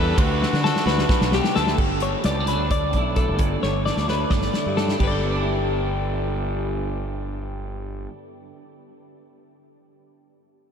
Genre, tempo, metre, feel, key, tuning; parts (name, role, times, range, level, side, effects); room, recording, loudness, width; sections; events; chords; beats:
math rock and midwest emo; 260 BPM (eighths); 7/8; straight; G major; A4 = 439 Hz
brilliant trumpet; melody; 0.0-1.6 s; F#4 to B4; -31 LUFS; right 1 dB; analog delay
twelve-string electric guitar; arpeggios; 0.0-8.2 s; G4 to G5; -25 LUFS; left 4 dB; analog delay
crunchy overdriven guitar; riff; 0.0-1.8 s; G2 to D4; -30 LUFS; right 2 dB
fuzz fingered electric bass; bass; 0.0-8.1 s; G1 to D3; -25 LUFS; right 1 dB; overdrive
loose indie drum kit; drums; 0.2-5.1 s; crash cymbal, hi-hat, kick drum, ride cymbal, snare drum; -24 LUFS; equal
clean electric guitar; accompaniment; 1.8-8.9 s; D2 to E4; -31 LUFS; right 6 dB; ensemble chorus
moderate huge ambient reverb, RT60 6.7 s; dreamy mix soaked in reverb; -20 LUFS; side -7 dB against mid
0.0-1.8 A section; 1.8-5.0 B section; 5.0-8.3 C section
drum fill 0.4-1.8, 3.6-5.0
0.2 D6; 1.8 G6
| 0.18 0.41 0.64 0.87 1.10 1.33 1.56 | 1.79 2.02 2.25 2.48 2.71 2.94 3.17 | 3.40 3.63 3.86 4.09 4.32 4.55 4.79 | 5.02 5.25 5.48 5.71 5.94 6.17 6.40 | 6.63 6.87 7.10 7.33 7.56 7.79 8.02